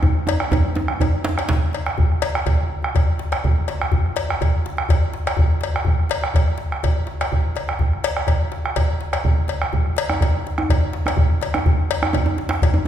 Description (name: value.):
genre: west african traditional, West African drum ensemble.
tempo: 124 BPM.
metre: 4/4.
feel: straight.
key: none.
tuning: none.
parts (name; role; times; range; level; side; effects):
bombo; percussion; 0.0-12.7 s; none; -20 LUFS; right 1 dB; none.
djembe; percussion; 0.0-12.7 s; none; -24 LUFS; left 3 dB; none.
djembe; percussion; 0.0-1.6, 10.1-12.9 s; none; -23 LUFS; right 1 dB; none.
cowbell; percussion; 0.3-12.7 s; none; -27 LUFS; left 5 dB; none.
room: wet recital hall reverb, RT60 1.5 s.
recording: recorded in a church or concert hall.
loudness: -18 LUFS.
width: side -10 dB against mid.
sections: 0.0-2.0 A section; 2.0-12.9 B section.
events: drum fill 0.0-2.0.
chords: none.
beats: | 0.03 0.52 1.00 1.49 | 1.98 2.46 2.95 3.44 | 3.92 4.41 4.89 5.38 | 5.86 6.34 6.83 7.31 | 7.80 8.28 8.76 9.24 | 9.73 10.21 10.69 11.17 | 11.65 12.13 12.61.